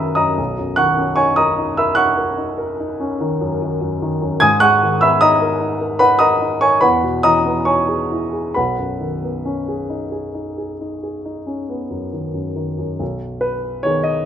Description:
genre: classical, impressionist solo piano.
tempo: 66-76 BPM.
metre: 5/4.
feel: rubato.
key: unclear.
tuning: A4 = 440 Hz.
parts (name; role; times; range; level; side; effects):
warm grand piano; solo; 0.0-14.3 s; B1 to G#6; -16 LUFS; equal; none.
room: moderate large studio reverb, RT60 1.4 s.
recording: minimal, uncompressed stereo recording.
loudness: -15 LUFS.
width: side -9 dB against mid.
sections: 0.0-13.0 A section; 13.0-14.3 B section.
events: none.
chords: 0.0 Badd9; 4.4 G#madd9; 6.8 Emaj7; 8.6 B69; 13.0 B6.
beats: | 0.39 1.19 1.99 2.81 3.61 | 4.41 5.21 6.01 6.83 7.68 | 8.56 9.46 10.36 11.26 12.13 | 13.00 13.86.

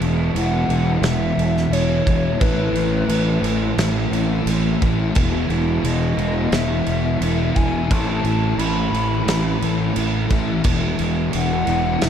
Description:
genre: rock, shoegaze and dream pop.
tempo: 87 BPM.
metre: 4/4.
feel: straight.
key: E major.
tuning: A4 = 440 Hz.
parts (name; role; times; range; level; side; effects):
overdriven semi-hollow guitar; riff; 0.0-12.1 s; A2 to E4; -24 LUFS; right 8 dB; reverse reverb.
thick fuzz guitar; riff; 0.0-12.1 s; E2 to A3; -23 LUFS; left 8 dB; distortion, ensemble chorus.
fuzz fingered electric bass; bass; 0.0-12.1 s; E1 to A1; -23 LUFS; equal; overdrive.
loose indie drum kit; drums; 0.0-12.1 s; crash cymbal, kick drum, snare drum; -24 LUFS; right 1 dB; none.
reedy FM lead; melody; 0.4-12.1 s; B4 to B5; -26 LUFS; left 2 dB; chorus, tape echo.
room: moderate lush hall reverb, RT60 2.8 s.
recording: dreamy mix soaked in reverb.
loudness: -17 LUFS.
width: side -8 dB against mid.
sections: 0.0-12.1 A section.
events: none.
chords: 0.0 E; 2.4 Amadd9; 5.2 E; 7.9 Amadd9; 10.6 E.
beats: 0.35 1.03 1.72 | 2.41 3.09 3.78 4.47 | 5.15 5.84 6.53 7.21 | 7.90 8.59 9.27 9.96 | 10.65 11.34 12.03.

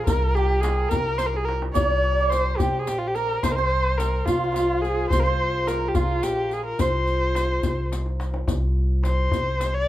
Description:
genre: Persian modal ensemble.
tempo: 71 BPM (dotted quarters).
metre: 6/8.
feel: straight.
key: C dastgah shur.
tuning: A4 = 440 Hz.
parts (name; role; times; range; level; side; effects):
rich kamancheh; melody; 0.0-9.9 s; F4 to D5-50c; -25 LUFS; left 1 dB; none.
santur; second line; 0.0-9.4 s; F4 to Db5+45c; -27 LUFS; right 2 dB; none.
upright bass; bass; 0.0-9.9 s; Bb1 to C2; -25 LUFS; equal; none.
riq; percussion; 0.1-9.7 s; none; -34 LUFS; left 4 dB; none.
tombak; percussion; 0.1-9.7 s; none; -29 LUFS; left 1 dB; none.
room: moderate studio reverb, RT60 0.5 s.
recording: band playing live in one room.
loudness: -20 LUFS.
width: side -14 dB against mid.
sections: 0.0-8.5 A section; 8.5-9.9 B section.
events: drum fill 1.2-1.8, 7.9-8.5.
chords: none.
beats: | 0.07 0.91 | 1.75 2.59 | 3.43 4.27 | 5.11 5.96 | 6.80 7.64 | 8.48 9.33.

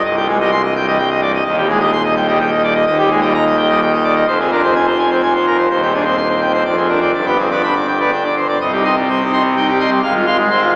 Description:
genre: classical, organ toccata.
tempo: 127 BPM.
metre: 3/4.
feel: straight.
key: C minor.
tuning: A4 = 440 Hz.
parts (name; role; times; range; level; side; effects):
pipe organ, full organ; solo; 0.0-10.8 s; C1 to C6; -12 LUFS; equal; none.
room: wet cathedral reverb, RT60 4.4 s.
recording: heard from further back in the room, small speaker sound.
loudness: -12 LUFS.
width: side -39 dB against mid.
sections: 0.0-8.6 A section; 8.6-10.8 B section.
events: none.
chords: 0.0 Cm; 1.4 Cm/Eb; 2.9 Eb; 4.3 Fm; 5.7 Cm/Eb; 6.7 Dm7b5/F; 7.1 G; 8.6 Cm; 10.0 Fm/Ab.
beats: | 0.04 0.51 0.98 | 1.45 1.92 2.39 | 2.87 3.34 3.81 | 4.28 4.75 5.23 | 5.70 6.18 6.65 | 7.14 7.63 8.12 | 8.61 9.09 9.56 | 10.03 10.50.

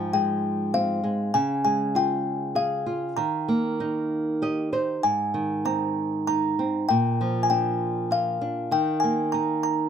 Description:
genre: children's music, lullaby.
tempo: 98 BPM.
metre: 3/4.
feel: straight.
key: Ab major.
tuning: A4 = 439 Hz.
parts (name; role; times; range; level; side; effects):
music box; melody; 0.0-9.8 s; F5 to Bb5; -25 LUFS; left 2 dB; none.
flamenco guitar; accompaniment; 0.0-9.9 s; Ab2 to Eb5; -25 LUFS; right 2 dB; none.
room: moderate studio reverb, RT60 0.6 s.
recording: none.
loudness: -22 LUFS.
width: side -8 dB against mid.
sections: 0.0-9.9 A section.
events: nylon-string guitar fill 4.1-5.0.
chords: 0.0 Fmadd9/Ab; 1.3 Db; 3.2 Eb; 5.0 Ab; 6.9 Bb; 8.7 Eb.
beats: 0.12 0.73 | 1.34 1.95 2.56 | 3.17 3.79 4.42 | 5.04 5.66 6.28 | 6.89 7.50 8.11 | 8.72 9.33.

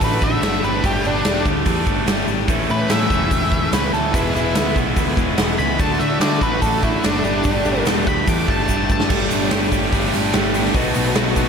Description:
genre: classic rock.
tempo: 145 BPM.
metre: 4/4.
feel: straight.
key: unclear.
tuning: A4 = 440 Hz.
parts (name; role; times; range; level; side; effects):
octave-fuzz lead guitar; melody; 0.0-9.1 s; D4 to D6; -24 LUFS; equal; distortion, slapback echo, tape echo.
picked steel-string acoustic guitar; accompaniment; 0.0-11.5 s; E2 to G4; -29 LUFS; right 10 dB; none.
crunchy overdriven guitar; riff; 0.0-11.5 s; A2 to G4; -24 LUFS; left 12 dB; slapback echo.
tight distorted guitar; riff; 0.0-11.5 s; E2 to A4; -25 LUFS; right 11 dB; distortion, slapback echo.
growling picked electric bass; bass; 0.0-11.5 s; E1 to D3; -24 LUFS; equal; overdrive.
big rock drum kit; drums; 0.0-11.5 s; crash cymbal, hi-hat, kick drum, snare drum; -21 LUFS; equal; none.
egg shaker; percussion; 0.0-11.5 s; none; -40 LUFS; left 14 dB; none.
clear upright piano; accompaniment; 2.5-11.5 s; D4 to D5; -31 LUFS; left 4 dB; none.
cranked stack guitar; riff; 9.1-11.5 s; G2 to B3; -25 LUFS; equal; overdrive, slapback echo.
room: moderate lush hall reverb, RT60 2.2 s.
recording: big arena sound.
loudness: -16 LUFS.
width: side -6 dB against mid.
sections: 0.0-9.1 A section; 9.1-11.5 B section.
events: lead electric guitar solo 0.0-9.1; drum fill 8.7-9.1.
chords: 0.0 Dadd9; 0.6 Gsus2; 2.5 A; 4.1 E; 5.8 Dadd9; 7.2 Gsus2; 10.8 B7.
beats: 0.01 0.43 | 0.84 1.25 1.67 2.08 | 2.49 2.90 3.32 3.73 | 4.14 4.55 4.97 5.38 | 5.79 6.21 6.62 7.04 | 7.45 7.86 8.28 8.69 | 9.10 9.51 9.93 10.34 | 10.75 11.16.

